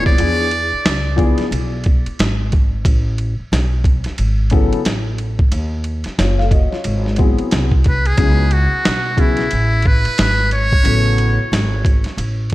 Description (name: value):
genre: hip hop, jazz-hop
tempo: 90 BPM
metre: 4/4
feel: swing 61% on 16ths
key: unclear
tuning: A4 = 439 Hz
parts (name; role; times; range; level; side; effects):
- trumpet with metal mute; melody; 0.0-1.4, 7.9-11.5 s; E4 to D5; -20 LUFS; right 1 dB; analog delay
- dark grand piano; accompaniment; 0.0-11.3 s; C#3 to E#5; -22 LUFS; left 3 dB; wide subtle chorus
- upright bass; bass; 0.0-12.5 s; D#1 to E2; -18 LUFS; equal; none
- boom bap sampler-style drum kit; drums; 0.1-12.5 s; hi-hat, kick drum, ride cymbal, snare drum; -17 LUFS; equal; vintage 12-bit sampler grit
room: light reverb, studio reverb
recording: none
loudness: -14 LUFS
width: side -17 dB against mid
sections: 0.0-12.5 A section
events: none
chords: 0.2 E7b9; 2.9 Asus2; 5.5 F#5; 6.9 G#7alt; 8.2 C#m7